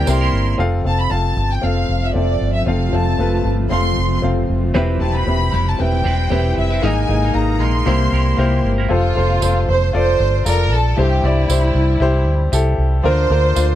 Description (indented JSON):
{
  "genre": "piano-driven pop",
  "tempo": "116 BPM",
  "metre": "4/4",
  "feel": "swing 56% on 16ths",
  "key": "unclear",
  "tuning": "A4 = 440 Hz",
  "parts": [
    { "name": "warm studio violin section", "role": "melody", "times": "0.0-13.8 s", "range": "E4 to C6", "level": "-21 LUFS", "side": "right 1 dB", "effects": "none" },
    { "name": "clear baby grand piano", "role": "accompaniment", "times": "0.0-13.8 s", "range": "G2 to F5", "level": "-21 LUFS", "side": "left 3 dB", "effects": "none" },
    { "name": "twelve-string electric guitar", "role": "riff", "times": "0.0-0.6, 4.7-8.9 s", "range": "C3 to B4", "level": "-26 LUFS", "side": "right 5 dB", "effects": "phaser" },
    { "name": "vintage muted fingered electric bass", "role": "bass", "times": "0.0-13.8 s", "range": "E1 to D2", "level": "-17 LUFS", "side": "equal", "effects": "none" },
    { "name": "tambourine", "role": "percussion", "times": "0.1-0.2, 9.4-13.7 s", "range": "none", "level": "-27 LUFS", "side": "right 11 dB", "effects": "none" },
    { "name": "granular cloud pad", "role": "sustained chords", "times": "1.4-8.9 s", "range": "C3 to B4", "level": "-28 LUFS", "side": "equal", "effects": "built-in reverb" }
  ],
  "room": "little or no reverb",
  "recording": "dry, close 1970s-style studio recording",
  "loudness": "-14 LUFS",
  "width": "side -12 dB against mid",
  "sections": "0.6-8.9 A section; 8.9-13.8 B section",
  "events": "none",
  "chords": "0.0 C7; 0.6 F; 4.8 Cmaj7/E; 6.8 Absus2; 7.9 C7; 8.9 F; 11.0 C; 13.0 Bb"
}